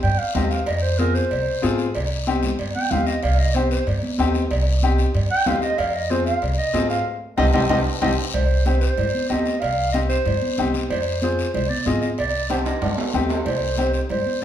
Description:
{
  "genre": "latin, cumbia",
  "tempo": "188 BPM",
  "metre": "4/4",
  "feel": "straight",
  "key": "C minor",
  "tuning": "A4 = 440 Hz",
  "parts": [
    { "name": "dark clarinet", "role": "melody", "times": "0.0-14.4 s", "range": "Bb4 to G5", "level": "-24 LUFS", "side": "right 2 dB", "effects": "none" },
    { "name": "upright bass", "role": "bass", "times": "0.0-14.2 s", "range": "C2 to Ab2", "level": "-23 LUFS", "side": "equal", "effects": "none" },
    { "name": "cowbell and timbales", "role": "percussion", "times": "0.0-14.3 s", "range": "none", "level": "-29 LUFS", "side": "right 3 dB", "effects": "none" },
    { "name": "guiro", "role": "percussion", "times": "0.0-14.4 s", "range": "none", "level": "-34 LUFS", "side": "left 6 dB", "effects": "none" },
    { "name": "congas", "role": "percussion", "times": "0.3-14.4 s", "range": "none", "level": "-28 LUFS", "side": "right 1 dB", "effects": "none" },
    { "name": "clear upright piano", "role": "accompaniment", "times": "0.4-14.4 s", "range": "C4 to Ab4", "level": "-24 LUFS", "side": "left 4 dB", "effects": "none" }
  ],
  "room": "wet large studio reverb, RT60 0.8 s",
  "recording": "band playing live in one room",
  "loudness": "-19 LUFS",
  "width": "side -10 dB against mid",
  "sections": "0.0-8.3 A section; 8.3-14.4 B section",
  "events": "clarinet solo 0.0-8.3; band accent 7.1-8.3; drum fill 7.4-8.3, 12.5-13.5",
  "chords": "0.0 Cm; 0.7 Fm; 2.0 Cm; 5.8 Fm; 7.1 Cm; 10.9 Fm; 12.2 Cm",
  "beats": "0.03 0.35 | 0.67 0.99 1.31 1.63 | 1.95 2.27 2.59 2.91 | 3.23 3.55 3.87 4.19 | 4.51 4.83 5.15 5.47 | 5.79 6.11 6.42 6.74 | 7.06 7.38 7.70 8.02 | 8.34 8.66 8.98 9.30 | 9.62 9.94 10.26 10.58 | 10.90 11.22 11.54 11.86 | 12.18 12.50 12.82 13.14 | 13.46 13.78 14.10 14.42"
}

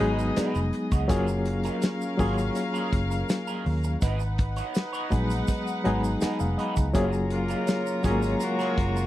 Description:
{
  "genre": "lush 1970s-style soul",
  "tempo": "82 BPM",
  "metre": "4/4",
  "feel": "straight",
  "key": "F# major",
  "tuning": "A4 = 440 Hz",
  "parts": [
    { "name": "dark studio string section", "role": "second line", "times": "0.0-9.1 s", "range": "B3 to A#5", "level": "-33 LUFS", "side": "equal", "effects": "none" },
    { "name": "barky reed electric piano", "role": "accompaniment", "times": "0.0-9.1 s", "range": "F#3 to A#5", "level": "-27 LUFS", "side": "left 1 dB", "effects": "overdrive, fast tremolo" },
    { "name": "electric guitar through a small old amp", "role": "riff", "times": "0.0-9.0 s", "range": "G#3 to C#5", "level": "-36 LUFS", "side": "right 5 dB", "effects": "wah" },
    { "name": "warm horn section", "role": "stabs", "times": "0.0-0.7, 7.3-9.1 s", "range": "A#2 to F#4", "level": "-32 LUFS", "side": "left 2 dB", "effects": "none" },
    { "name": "vintage muted fingered electric bass", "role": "bass", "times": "0.0-9.1 s", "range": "E#1 to D#2", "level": "-28 LUFS", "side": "equal", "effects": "none" },
    { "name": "warm soul drum kit", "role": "drums", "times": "0.0-9.1 s", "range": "hi-hat, kick drum, snare drum", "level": "-27 LUFS", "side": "equal", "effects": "none" },
    { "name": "tube shaker", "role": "percussion", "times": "0.2-9.1 s", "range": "none", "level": "-46 LUFS", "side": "right 14 dB", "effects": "none" }
  ],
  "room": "little or no reverb",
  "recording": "dry, close 1970s-style studio recording",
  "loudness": "-24 LUFS",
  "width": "side -14 dB against mid",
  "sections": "0.0-9.1 A section",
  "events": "reed electric piano fill 5.5-6.9",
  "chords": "0.0 G#m7; 1.1 F#maj9; 4.0 G#m7; 6.9 F#maj9",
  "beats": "0.37 | 1.10 1.83 2.56 3.29 | 4.02 4.75 5.48 6.21 | 6.95 7.68 8.41"
}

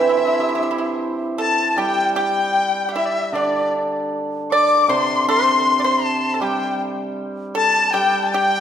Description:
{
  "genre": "chinese traditional, Chinese chamber ensemble",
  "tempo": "77 BPM",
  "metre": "4/4",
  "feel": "rubato",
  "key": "C gong mode",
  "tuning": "A4 = 440 Hz",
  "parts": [
    { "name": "bright dizi", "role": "melody", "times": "0.0-8.6 s", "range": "D5 to D6", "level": "-21 LUFS", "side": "left 1 dB", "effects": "none" },
    { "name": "pipa", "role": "second line", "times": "0.0-8.6 s", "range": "D4 to D5", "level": "-24 LUFS", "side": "right 4 dB", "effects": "none" },
    { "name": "rich erhu", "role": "second line", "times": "0.0-8.6 s", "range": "D5 to D6", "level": "-22 LUFS", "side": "left 5 dB", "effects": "none" },
    { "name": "hammered dulcimer", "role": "accompaniment", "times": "0.0-8.6 s", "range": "C3 to C5", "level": "-23 LUFS", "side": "right 2 dB", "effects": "none" }
  ],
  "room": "wet concert hall reverb, RT60 2.0 s",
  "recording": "none",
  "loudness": "-16 LUFS",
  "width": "side -9 dB against mid",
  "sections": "0.0-8.6 A section",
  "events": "none",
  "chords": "none",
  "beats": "0.20 0.99 | 1.78 2.56 3.35 4.13 | 4.91 5.68 6.44 7.20 | 7.96"
}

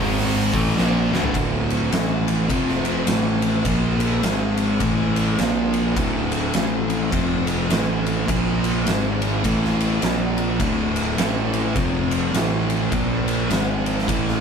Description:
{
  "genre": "stoner and doom metal",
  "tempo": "104 BPM",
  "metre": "4/4",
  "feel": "swing 61% on 8ths",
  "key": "D minor",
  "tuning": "A4 = 440 Hz",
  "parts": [
    { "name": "thick fuzz guitar", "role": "riff", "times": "0.0-14.4 s", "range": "D2 to Bb3", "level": "-24 LUFS", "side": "left 6 dB", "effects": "distortion" },
    { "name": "thick fuzz guitar", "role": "riff", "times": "0.0-14.4 s", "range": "D2 to Bb3", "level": "-24 LUFS", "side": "right 7 dB", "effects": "distortion" },
    { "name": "tight distorted guitar", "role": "riff", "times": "0.0-1.3 s", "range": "D2 to Bb3", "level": "-25 LUFS", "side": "left 1 dB", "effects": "distortion" },
    { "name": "fuzz fingered electric bass", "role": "bass", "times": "0.0-14.4 s", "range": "D1 to Bb1", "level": "-26 LUFS", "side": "equal", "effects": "overdrive" },
    { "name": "oversized low-tuned drum kit", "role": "drums", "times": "0.2-14.4 s", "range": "hi-hat, kick drum, ride cymbal, snare drum, toms", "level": "-24 LUFS", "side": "equal", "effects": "none" }
  ],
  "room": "light reverb",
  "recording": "band playing live in one room",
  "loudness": "-18 LUFS",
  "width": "side -6 dB against mid",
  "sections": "0.0-1.3 A section; 1.3-14.4 B section",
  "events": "drum fill 0.8-1.3",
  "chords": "0.5 Dm; 1.3 D5; 1.9 A5; 2.5 F5; 3.1 A5; 3.7 Bb5; 4.2 G#5; 4.8 A5; 5.4 Bb5; 6.0 D5; 6.5 A5; 7.1 F5; 7.7 A5; 8.3 Bb5; 8.9 G#5; 9.4 A5; 10.0 Bb5; 10.6 D5; 11.2 A5; 11.8 F5; 12.3 A5; 12.9 Bb5; 13.5 G#5",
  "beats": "0.19 0.76 | 1.34 1.92 2.50 3.07 | 3.65 4.23 4.81 5.39 | 5.97 6.55 7.13 7.71 | 8.29 8.87 9.45 10.03 | 10.61 11.19 11.77 12.35 | 12.93 13.51 14.08"
}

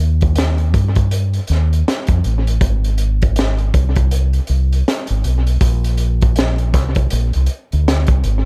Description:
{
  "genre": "R&B, neo-soul",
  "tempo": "80 BPM",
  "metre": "4/4",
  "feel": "swing 62% on 16ths",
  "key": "Eb major",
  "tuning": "A4 = 440 Hz",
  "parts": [
    { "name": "deep dub fingered electric bass", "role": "bass", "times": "0.0-8.5 s", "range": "Ab1 to G2", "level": "-17 LUFS", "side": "equal", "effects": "none" },
    { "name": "crunchy breakbeat drum kit", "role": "drums", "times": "0.2-8.5 s", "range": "hi-hat, kick drum, snare drum", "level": "-20 LUFS", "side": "equal", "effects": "analog delay" }
  ],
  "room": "little or no reverb",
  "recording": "echo-heavy mix",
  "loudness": "-16 LUFS",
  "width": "mono",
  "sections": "0.0-8.5 A section",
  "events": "none",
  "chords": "none",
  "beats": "0.36 1.11 1.86 | 2.61 3.36 4.11 4.86 | 5.61 6.36 7.11 7.86"
}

